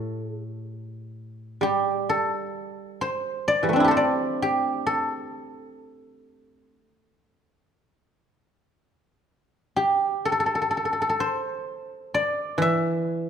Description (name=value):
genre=chinese traditional, Chinese solo plucked strings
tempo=58-67 BPM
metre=4/4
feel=rubato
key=A yu mode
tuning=A4 = 443 Hz
part: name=guzheng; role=solo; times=0.0-13.3 s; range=A2 to E5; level=-23 LUFS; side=equal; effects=none
room=moderate recital hall reverb, RT60 1.7 s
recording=minimal, uncompressed stereo recording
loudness=-22 LUFS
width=side -8 dB against mid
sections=0.0-9.3 A section; 9.3-13.3 B section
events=none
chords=none